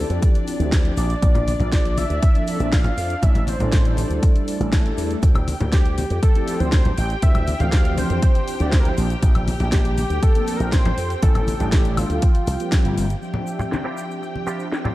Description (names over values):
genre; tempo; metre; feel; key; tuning
nu-disco, nu disco; 120 BPM; 4/4; straight; D minor; A4 = 440 Hz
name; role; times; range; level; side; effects
wide unison lead; melody; 0.0-13.0 s; F4 to G5; -28 LUFS; equal; tape echo
mellow synth brass; accompaniment; 0.0-14.9 s; E3 to E5; -28 LUFS; equal; chorus, sidechain pumping, slapback echo
dark studio string section; sustained chords; 0.0-14.9 s; D4 to G5; -32 LUFS; left 2 dB; sidechain pumping
slap bass with an envelope filter; bass; 0.0-13.1 s; G1 to F2; -23 LUFS; equal; none
house drum kit; drums; 0.1-14.8 s; hi-hat, snare drum, woodblock; -30 LUFS; left 1 dB; overdrive, low-pass filter on hats, studio reverb, low-pass filter on snare, low-pass filter on perc
egg shaker and congas; percussion; 0.1-14.9 s; none; -28 LUFS; left 2 dB; none
electronic kick drum; drums; 0.2-12.8 s; none; -17 LUFS; equal; overdrive, studio reverb
direct-recorded clean electric guitar; riff; 13.6-14.9 s; C4 to G4; -31 LUFS; right 2 dB; ensemble chorus, vintage 12-bit sampler grit, low-pass filter, slapback echo
room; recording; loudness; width
little or no reverb; dark, warm production; -17 LUFS; side -16 dB against mid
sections
0.0-13.2 A section; 13.2-14.9 B section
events
none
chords
0.0 Dm11; 1.0 Bbadd9; 3.2 A7sus4; 5.2 Dm11; 9.0 Bbmaj9; 11.2 A7sus4; 12.2 C7sus4; 13.2 Dm11